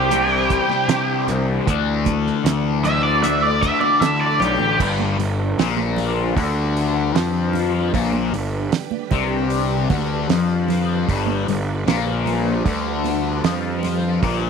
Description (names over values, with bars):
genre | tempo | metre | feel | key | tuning
psychedelic rock | 76 BPM | 4/4 | straight | G mixolydian | A4 = 440 Hz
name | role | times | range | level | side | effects
octave-fuzz lead guitar | melody | 0.0-4.8 s | G4 to E5 | -19 LUFS | right 2 dB | wah, distortion, slapback echo
string machine, full ensemble | sustained chords | 0.0-14.5 s | D3 to F#5 | -30 LUFS | right 12 dB | ensemble chorus
fuzz guitar | riff | 0.0-14.5 s | G2 to D4 | -22 LUFS | left 11 dB | distortion, phaser
fuzz picked electric bass | bass | 0.0-14.5 s | G1 to D3 | -23 LUFS | right 1 dB | overdrive
cloth-damped thuddy drum kit | drums | 0.1-14.4 s | crash cymbal, hi-hat, kick drum, snare drum | -24 LUFS | right 6 dB | none
congas | percussion | 0.1-14.0 s | none | -29 LUFS | right 12 dB | none
room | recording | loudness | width
light reverb | 1960s-style stereo with parts hard left and right | -17 LUFS | side -6 dB against mid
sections
0.0-4.8 A section; 4.8-14.5 B section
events
lead electric guitar solo 0.0-4.8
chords
0.0 Cadd9; 1.7 Dadd9; 4.8 G